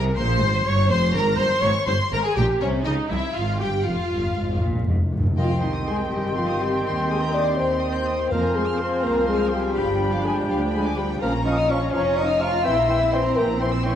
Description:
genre	quick classical-period movement for symphony orchestra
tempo	82 BPM (dotted quarters)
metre	6/8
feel	straight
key	F minor, C minor from 5.4 s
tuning	A4 = 440 Hz
part	rich chamber violin section	melody	0.0-14.0 s	Db5 to F6	-32 LUFS	left 2 dB	none
part	rich chamber violin section	second line	0.0-14.0 s	Db4 to G6	-30 LUFS	left 4 dB	none
part	rich chamber viola section	accompaniment	0.0-14.0 s	C4 to Db5	-28 LUFS	right 1 dB	none
part	bright chamber double bass section	bass	0.0-14.0 s	F1 to F2	-27 LUFS	right 1 dB	none
part	rich chamber cello section	bass	0.0-14.0 s	F2 to F4	-28 LUFS	right 1 dB	none
part	timpani	percussion	3.9-6.1, 8.3-9.0 s	F2 to C3	-25 LUFS	left 1 dB	none
part	hollow concert flute	second line	5.4-13.9 s	Bb5 to C6	-33 LUFS	left 2 dB	none
part	mellow cor anglais	second line	5.4-13.9 s	F5 to G5	-33 LUFS	right 4 dB	none
part	warm clarinet	second line	5.4-14.0 s	C4 to D4	-33 LUFS	left 2 dB	none
part	mellow bassoon	accompaniment	5.4-14.0 s	Eb3 to F3	-30 LUFS	right 1 dB	none
part	mellow French horn section	sustained chords	5.4-14.0 s	Eb4 to F5	-24 LUFS	left 3 dB	none
room	moderate scoring stage reverb, RT60 1.7 s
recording	vinyl crackle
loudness	-19 LUFS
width	side -10 dB against mid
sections	0.0-5.4 A section; 5.4-14.0 B section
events	timpani fill 3.9-5.4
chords	0.0 C5; 0.9 Fm; 2.4 Bbm69 (rootless); 3.1 N.C.; 3.9 Fm; 5.4 Cm; 6.9 Cm/Eb; 8.3 Fm; 9.8 G7; 11.2 Bbm; 12.7 C7/Bb

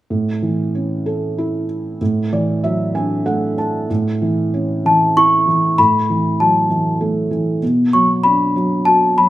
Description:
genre	children's music, lullaby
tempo	96 BPM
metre	3/4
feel	rubato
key	A major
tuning	A4 = 437 Hz
part	felt-muted upright piano	accompaniment	0.1-9.3 s	A2 to A5	-17 LUFS	right 1 dB	none
part	celesta	melody	4.9-9.3 s	A5 to C#6	-13 LUFS	left 1 dB	none
room	moderate recital hall reverb, RT60 1.3 s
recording	none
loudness	-14 LUFS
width	side -15 dB against mid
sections	0.1-3.9 A section; 3.9-9.3 B section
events	felt piano fill 2.0-3.9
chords	0.1 A; 2.0 Dadd9/A; 3.9 A; 5.8 B7sus4/A; 7.6 Bm

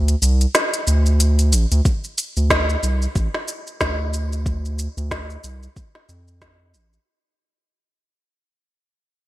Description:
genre	organic downtempo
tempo	92 BPM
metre	4/4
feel	swing 57% on 16ths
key	unclear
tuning	A4 = 440 Hz
part	round analog bass	bass	0.0-7.0 s	A1 to F2	-18 LUFS	equal	none
part	organic electronic drum kit	drums	0.1-7.0 s	hi-hat, shaker, snare drum	-22 LUFS	equal	overdrive, small room ambience, gated reverb
part	electronic kick drum	drums	1.9-6.6 s	none	-22 LUFS	equal	overdrive, small room ambience
room	light reverb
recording	bright 1980s-style digital production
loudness	-17 LUFS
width	side -16 dB against mid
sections	0.0-1.9 A section; 1.9-7.1 B section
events	kick drops out 0.5-1.9; fade-out 1.9-7.1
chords	none

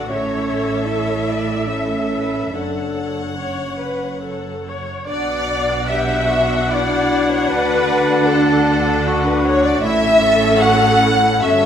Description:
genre	cinematic, emotional film score for orchestra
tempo	68-79 BPM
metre	3/4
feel	rubato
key	B minor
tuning	A4 = 439 Hz
part	rich studio violin section	second line	0.0-11.7 s	A4 to F#5	-21 LUFS	left 1 dB	none
part	rich studio viola section	accompaniment	0.0-11.7 s	C#4 to F#5	-22 LUFS	left 1 dB	none
part	rich studio cello section	bass	0.0-11.7 s	F#2 to D3	-24 LUFS	right 3 dB	none
part	warm studio double bass section	bass	0.0-11.7 s	F#1 to D2	-26 LUFS	right 4 dB	none
part	dark French horn	melody	0.1-4.7 s	C#4 to E4	-25 LUFS	right 1 dB	none
part	warm studio violin section	melody	5.1-11.7 s	A4 to F#5	-25 LUFS	left 4 dB	none
part	mellow hollow concert flute	second line	5.1-11.7 s	A4 to F#5	-22 LUFS	left 2 dB	none
part	warm French horn section	sustained chords	5.1-11.7 s	C#4 to A4	-24 LUFS	left 4 dB	none
part	warm clarinet	second line	5.9-11.7 s	D4 to A4	-23 LUFS	left 1 dB	none
room	wet scoring stage reverb, RT60 1.7 s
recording	none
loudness	-15 LUFS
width	side -8 dB against mid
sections	0.0-5.1 A section; 5.1-11.7 A section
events	none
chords	0.1 A; 2.5 F#m; 5.1 Bm; 7.5 D; 9.8 A

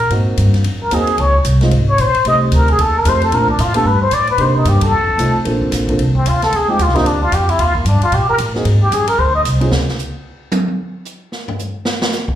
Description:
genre	jazz, small-group swing and bop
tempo	225 BPM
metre	4/4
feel	swing 61% on 8ths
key	Bb major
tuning	A4 = 441 Hz
part	trumpet with plunger mute	melody	0.0-9.4 s	Bb3 to Eb5	-15 LUFS	left 1 dB	plate reverb, slapback echo
part	upright bass	bass	0.0-9.9 s	Ab1 to C3	-15 LUFS	equal	none
part	open jazz drum kit	drums	0.0-12.3 s	hi-hat, kick drum, ride cymbal, snare drum, toms	-23 LUFS	equal	none
part	warm concert grand piano	accompaniment	0.1-9.7 s	Ab3 to A4	-21 LUFS	right 1 dB	plate reverb, slapback echo
room	moderate club reverb, RT60 0.5 s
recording	live gig heard through the venue's PA, club reverb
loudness	-12 LUFS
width	side -11 dB against mid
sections	0.0-5.5 A section; 5.5-12.4 B section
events	band accent 4.8; muted trumpet solo 5.5-12.4; drum solo 9.7-12.4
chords	0.1 Ab7; 1.2 Dbmaj7(no3); 2.3 F7; 3.3 Bbmaj7; 3.9 Gadd9; 4.4 Cm7; 4.9 F7; 5.5 Bbmaj7; 6.5 Fm7; 7.1 Dm; 7.6 Eb; 8.7 Ab7; 9.7 N.C.

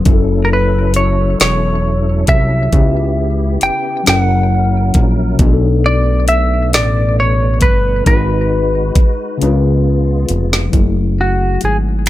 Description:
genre	slow six-eight R&B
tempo	45 BPM (dotted quarters)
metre	6/8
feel	straight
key	F# minor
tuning	A4 = 440 Hz
part	mellow tine electric piano	accompaniment	0.0-12.1 s	B2 to B4	-20 LUFS	left 7 dB	none
part	tonewheel organ	sustained chords	0.0-10.7 s	C#3 to B4	-24 LUFS	right 1 dB	chorus vibrato, slow rotary speaker
part	fat analog bass	bass	0.0-12.1 s	E1 to C#2	-15 LUFS	equal	none
part	smooth R&B drum kit	drums	0.1-12.1 s	finger snaps, hi-hat, kick drum, snare drum	-12 LUFS	equal	none
part	semi-hollow electric guitar	melody	0.4-11.8 s	F#4 to G5	-17 LUFS	equal	ping-pong delay
room	digital ambience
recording	none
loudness	-11 LUFS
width	side -15 dB against mid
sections	0.0-10.7 A section; 10.7-12.1 B section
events	drum fill 9.4-10.7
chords	0.1 F#m7; 2.7 C#m7b5; 4.1 F#7; 5.4 Bm7; 8.1 G#m7; 9.4 C#7; 10.7 F#m9

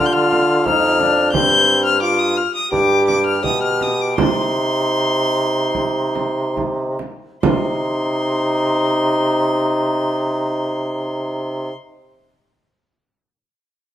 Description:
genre	classical, renaissance-style consort dance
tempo	68-89 BPM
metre	4/4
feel	straight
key	C minor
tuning	A4 = 441 Hz
part	rich violin	melody	0.0-11.7 s	C6 to G6	-20 LUFS	left 4 dB	none
part	brilliant trombone	accompaniment	0.0-11.7 s	C4 to G4	-21 LUFS	right 1 dB	none
part	warm bassoon	bass	0.0-11.7 s	F2 to D3	-20 LUFS	right 1 dB	none
part	frame drum	percussion	0.3-7.8 s	none	-22 LUFS	right 4 dB	none
room	wet stone room reverb, RT60 1.2 s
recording	none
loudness	-15 LUFS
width	side -11 dB against mid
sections	0.0-7.4 A section; 7.4-10.9 B section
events	slowing down 0.0-7.4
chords	0.0 Ebmaj7sus2; 1.3 G7sus4; 2.7 G; 4.2 Cm

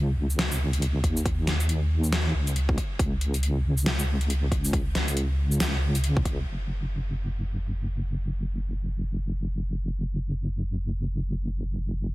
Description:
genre	deep dubstep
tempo	138 BPM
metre	4/4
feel	swing 60% on 16ths, half-time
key	unclear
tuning	A4 = 439 Hz
part	deep soft wobble bass	bass	0.0-12.1 s	F#1 to D#2	-26 LUFS	equal	chorus
part	dubstep drum kit	drums	0.3-6.4 s	hi-hat, shaker, snare drum	-31 LUFS	left 1 dB	overdrive
part	electronic kick drum	drums	1.0-6.4 s	none	-27 LUFS	equal	overdrive
room	little or no reverb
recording	heavily compressed radio sound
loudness	-24 LUFS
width	side -19 dB against mid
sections	0.0-6.5 A section; 6.5-12.1 B section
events	none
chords	none

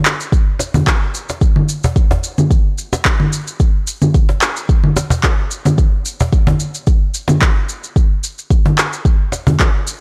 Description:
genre	downtempo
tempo	110 BPM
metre	4/4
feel	swing 54% on 16ths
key	none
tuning	none
part	electronic handclaps, shaker and congas	drums	0.1-10.0 s	none	-19 LUFS	equal	overdrive
part	electronic kick drum	drums	0.3-9.7 s	none	-15 LUFS	equal	overdrive
part	cajon	percussion	0.6-9.6 s	none	-20 LUFS	equal	none
room	little or no reverb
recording	dry, gritty hardware recording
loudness	-15 LUFS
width	mono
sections	0.0-10.0 A section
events	none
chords	none

